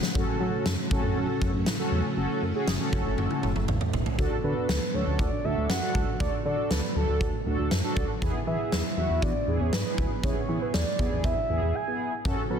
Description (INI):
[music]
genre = synth-pop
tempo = 119 BPM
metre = 4/4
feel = straight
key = F# minor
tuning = A4 = 438 Hz
[part]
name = string machine, full ensemble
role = sustained chords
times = 0.0-4.2 s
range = C#3 to F#4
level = -34 LUFS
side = equal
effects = ensemble chorus
[part]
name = huge arena drum kit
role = drums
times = 0.0-12.4 s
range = kick drum, snare drum, toms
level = -28 LUFS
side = equal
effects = none
[part]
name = mellow synth brass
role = accompaniment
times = 0.2-12.6 s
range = B3 to A4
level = -32 LUFS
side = right 1 dB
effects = chorus
[part]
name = chorused synth bass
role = bass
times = 0.2-12.6 s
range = E1 to F#3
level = -29 LUFS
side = equal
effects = none
[part]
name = soft octave-layered synth lead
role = melody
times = 4.4-12.6 s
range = A4 to G#5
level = -31 LUFS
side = right 1 dB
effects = chorus, phaser, tape echo
[sound]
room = light reverb, small room ambience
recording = dense, heavily limited modern master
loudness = -24 LUFS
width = side -7 dB against mid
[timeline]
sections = 0.2-4.2 A section; 4.2-12.6 B section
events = drum fill 0.0, 3.2-4.2; break 11.7-12.3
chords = 0.2 F#m; 4.2 D; 8.2 E